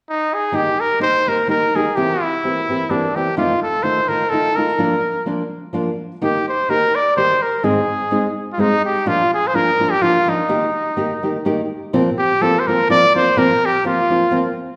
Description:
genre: mexican folk, mariachi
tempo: 126 BPM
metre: 3/4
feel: swing 54% on 8ths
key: Eb major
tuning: A4 = 439 Hz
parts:
  - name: bright trumpet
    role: melody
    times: 0.1-14.5 s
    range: D4 to D5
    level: -19 LUFS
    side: equal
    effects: none
  - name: nylon-string guitar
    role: accompaniment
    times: 0.5-14.5 s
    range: F2 to Ab4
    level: -22 LUFS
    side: equal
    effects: none
room: wet recital hall reverb, RT60 1.4 s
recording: recorded in a church or concert hall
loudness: -18 LUFS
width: mono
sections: 0.5-11.9 A section; 11.9-14.8 B section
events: none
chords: 0.0 N.C.; 0.5 Eb; 2.0 C7; 3.4 F7; 4.8 Bb/F; 6.2 Eb; 7.6 Ab; 9.1 Bb; 10.5 Eb; 11.9 Bbsus2

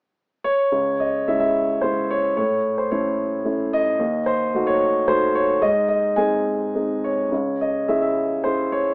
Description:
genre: classical, lyrical solo piano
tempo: 109 BPM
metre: 3/4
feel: rubato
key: C# harmonic minor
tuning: A4 = 440 Hz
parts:
  - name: dark baby grand piano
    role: solo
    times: 0.4-8.9 s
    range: C#2 to G#5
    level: -21 LUFS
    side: equal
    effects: none
room: light reverb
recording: small speaker sound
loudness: -21 LUFS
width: mono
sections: 0.7-8.9 A section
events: none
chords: 0.0 N.C.; 0.7 C#m; 2.4 A; 4.0 D#dim; 5.6 G#; 7.3 C#m

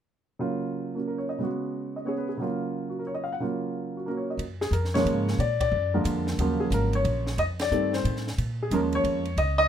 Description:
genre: jazz piano trio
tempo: 180 BPM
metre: 3/4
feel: swing 64% on 8ths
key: F# major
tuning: A4 = 440 Hz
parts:
  - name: warm upright piano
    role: melody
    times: 0.4-9.7 s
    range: C#3 to F#5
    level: -26 LUFS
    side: equal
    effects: none
  - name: upright bass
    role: bass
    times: 4.4-9.7 s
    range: G#1 to A#2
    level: -28 LUFS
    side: equal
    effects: none
  - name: compact cocktail drum kit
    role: drums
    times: 4.4-9.5 s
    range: hi-hat, kick drum, ride cymbal, snare drum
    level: -37 LUFS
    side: right 2 dB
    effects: none
room: light reverb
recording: minimal, uncompressed stereo recording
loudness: -25 LUFS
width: side -9 dB against mid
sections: 0.4-4.4 A section; 4.4-9.7 B section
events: band accent 5.6, 7.5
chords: 0.4 F#maj7/C#; 1.4 C#7sus4; 2.4 F#maj7/C#; 4.4 F#maj9; 5.4 A#7; 6.4 D#m9; 7.4 F7; 8.4 A#m7

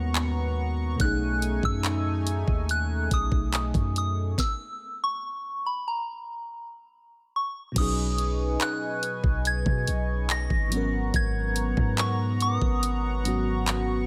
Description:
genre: contemporary R&B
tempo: 71 BPM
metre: 4/4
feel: straight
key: B major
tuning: A4 = 440 Hz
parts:
  - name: soft synth bell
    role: melody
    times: 0.0-14.1 s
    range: A#5 to A#6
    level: -33 LUFS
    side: equal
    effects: chorus
  - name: FM electric piano with soft pad layer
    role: accompaniment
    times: 0.0-14.1 s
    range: G#2 to A#4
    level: -35 LUFS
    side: equal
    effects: chorus
  - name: chorused pulse-width pad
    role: sustained chords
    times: 0.0-14.1 s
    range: A3 to C#6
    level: -36 LUFS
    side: equal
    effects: none
  - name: long sustained 808-style bass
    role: bass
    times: 0.0-14.1 s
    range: G#1 to B2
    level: -30 LUFS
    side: equal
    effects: none
  - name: trap drum kit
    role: drums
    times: 0.2-13.9 s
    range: crash cymbal, handclaps, hi-hat, kick drum, snare drum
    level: -30 LUFS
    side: equal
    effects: none
room: digital ambience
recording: none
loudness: -27 LUFS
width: mono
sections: 0.0-7.8 A section; 7.8-14.1 B section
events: stop 4.4-7.8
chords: 0.0 G#m11; 1.0 B13; 4.4 N.C.; 7.8 B69; 10.7 G#m11

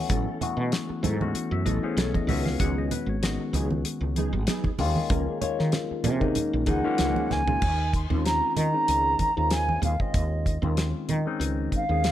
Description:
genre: electric jazz fusion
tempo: 96 BPM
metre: 4/4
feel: swing 54% on 16ths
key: unclear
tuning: A4 = 438 Hz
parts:
  - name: barky tine electric piano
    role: accompaniment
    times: 0.0-12.1 s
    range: Eb3 to Gb5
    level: -29 LUFS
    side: left 4 dB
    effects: overdrive, phaser
  - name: mellow electric guitar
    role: stabs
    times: 0.1-7.5 s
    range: F3 to A4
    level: -34 LUFS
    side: right 2 dB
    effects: ensemble chorus
  - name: woody fretless electric bass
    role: bass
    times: 0.1-12.1 s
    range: Ab1 to Eb3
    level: -27 LUFS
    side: right 1 dB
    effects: analog chorus
  - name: damped 70s drum kit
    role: drums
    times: 0.1-12.1 s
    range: crash cymbal, hi-hat, kick drum, snare drum, toms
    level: -29 LUFS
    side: equal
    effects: none
  - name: congas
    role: percussion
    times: 0.4-11.2 s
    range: none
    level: -33 LUFS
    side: right 3 dB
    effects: none
  - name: mellow jazz flute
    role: melody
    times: 6.7-12.1 s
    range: Eb5 to C6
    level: -26 LUFS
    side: right 2 dB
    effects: slapback echo
room: light reverb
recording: none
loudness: -23 LUFS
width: side -12 dB against mid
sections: 0.0-7.6 A section; 7.6-12.1 B section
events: tine electric piano fill 6.7-7.6; drum fill 7.3-7.6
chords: 0.0 B9sus4; 2.3 Db9sus4; 4.8 Eb9sus4; 7.6 Eb13sus4

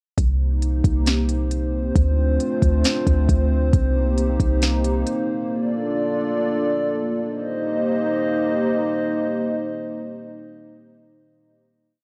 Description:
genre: hip hop, atmospheric cloud-rap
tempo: 135 BPM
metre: 4/4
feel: half-time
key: C dorian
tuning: A4 = 440 Hz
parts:
  - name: dark analog pad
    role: sustained chords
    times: 0.2-11.5 s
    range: A3 to Eb5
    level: -25 LUFS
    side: equal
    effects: chorus, sidechain pumping, cassette tape
  - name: clean 808-style bass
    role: bass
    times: 0.2-5.0 s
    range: C2 to D2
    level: -22 LUFS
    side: equal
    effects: none
  - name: smooth R&B drum kit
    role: drums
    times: 0.2-5.2 s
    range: hi-hat, kick drum, snare drum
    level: -23 LUFS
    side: equal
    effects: cassette tape
room: little or no reverb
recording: home recording on cassette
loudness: -21 LUFS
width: mono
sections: 0.2-7.3 verse; 7.3-10.8 final chord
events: none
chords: 0.2 Cm7; 2.0 Dm7; 3.7 Cm7; 5.5 Bbmaj7; 7.3 Cm7

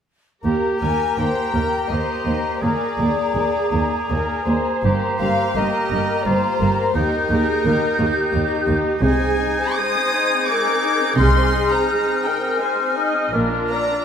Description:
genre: classical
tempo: 78-88 BPM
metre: 3/4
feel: rubato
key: Eb major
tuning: A4 = 437 Hz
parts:
  - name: clear oboe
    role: second line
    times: 0.4-14.0 s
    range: D4 to Ab4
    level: -27 LUFS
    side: right 1 dB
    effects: none
  - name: dark studio violin section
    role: second line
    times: 0.4-14.0 s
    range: Ab3 to Bb4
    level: -26 LUFS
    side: left 3 dB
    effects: none
  - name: flute section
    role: second line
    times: 0.4-14.0 s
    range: Bb5 to Ab6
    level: -25 LUFS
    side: left 1 dB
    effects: none
  - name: dark symphonic viola section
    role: accompaniment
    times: 0.4-14.0 s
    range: G4 to Eb5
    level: -24 LUFS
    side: equal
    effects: none
  - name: dark symphonic double bass section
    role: bass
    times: 0.4-13.9 s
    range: G1 to Eb2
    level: -24 LUFS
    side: right 2 dB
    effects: none
  - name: warm symphonic cello section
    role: bass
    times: 0.4-13.9 s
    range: Eb2 to C3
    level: -24 LUFS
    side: right 2 dB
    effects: none
  - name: warm symphonic violin section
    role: melody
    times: 0.8-14.0 s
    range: Bb4 to Eb6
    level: -25 LUFS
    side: left 4 dB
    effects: none
room: moderate scoring stage reverb, RT60 1.9 s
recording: none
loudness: -17 LUFS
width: side -8 dB against mid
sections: 0.4-14.0 A section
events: none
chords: 0.4 Eb; 2.6 Bb7/Eb; 4.8 Eb/G; 7.0 Eb; 9.0 Ab/C; 11.2 Fm7/C; 13.3 Bb

